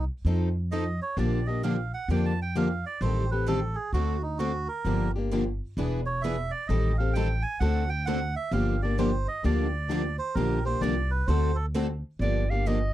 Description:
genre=acoustic string swing (jazz manouche)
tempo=131 BPM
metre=4/4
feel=swing 65% on 8ths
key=G minor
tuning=A4 = 441 Hz
part: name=melodica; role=second line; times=0.0-11.7 s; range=Eb4 to A5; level=-32 LUFS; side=right 5 dB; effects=none
part: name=upright bass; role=bass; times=0.0-12.9 s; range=E1 to F2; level=-28 LUFS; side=equal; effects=none
part: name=picked plugged-in steel-string acoustic guitar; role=accompaniment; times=0.3-12.8 s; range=D3 to A4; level=-30 LUFS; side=left 4 dB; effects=none
part: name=picked steel-string acoustic guitar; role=accompaniment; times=0.3-12.8 s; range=D3 to B4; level=-34 LUFS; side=right 7 dB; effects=none
part: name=clear clarinet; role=melody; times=12.2-12.9 s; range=D5 to F5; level=-31 LUFS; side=right 2 dB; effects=none
room=little or no reverb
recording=dry, close 1970s-style studio recording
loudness=-25 LUFS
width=side -13 dB against mid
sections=0.0-12.2 A section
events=melodica solo 0.0-12.2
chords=0.3 F7; 1.2 Bb6; 3.0 Am7b5; 3.9 D7; 4.9 Gm7; 5.8 E7; 6.7 Am7b5; 7.6 D7; 8.5 Gm7; 11.3 D7; 12.2 Gm7

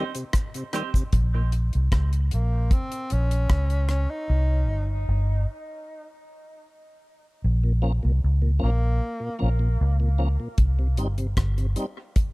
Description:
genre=dub reggae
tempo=76 BPM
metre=4/4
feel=straight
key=Bb dorian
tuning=A4 = 440 Hz
part: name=semi-hollow electric guitar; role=accompaniment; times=0.0-0.9 s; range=C4 to C5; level=-35 LUFS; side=right 6 dB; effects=dub echo
part: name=tonewheel organ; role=accompaniment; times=0.0-1.4, 7.6-11.9 s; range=Bb2 to Eb4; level=-32 LUFS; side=left 1 dB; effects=overdrive, chorus vibrato, stopped rotary speaker
part: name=deep reggae drum kit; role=drums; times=0.1-4.1, 10.6-12.3 s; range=hi-hat, kick drum, rim click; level=-23 LUFS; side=equal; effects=none
part: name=cabasa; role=percussion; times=0.2-1.1 s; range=none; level=-42 LUFS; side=right 6 dB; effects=none
part: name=vintage muted fingered electric bass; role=bass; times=1.1-11.7 s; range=G1 to Db2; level=-21 LUFS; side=equal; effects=none
part: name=warm tenor saxophone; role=melody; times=2.3-9.4 s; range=Bb3 to Eb4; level=-34 LUFS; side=equal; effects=dub echo
room=small room ambience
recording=none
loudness=-21 LUFS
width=side -23 dB against mid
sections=0.0-12.3 A section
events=part muted 1.1-12.3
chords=0.0 Cm; 1.1 Bbm; 4.3 C5; 7.4 Bbm; 10.6 Cm

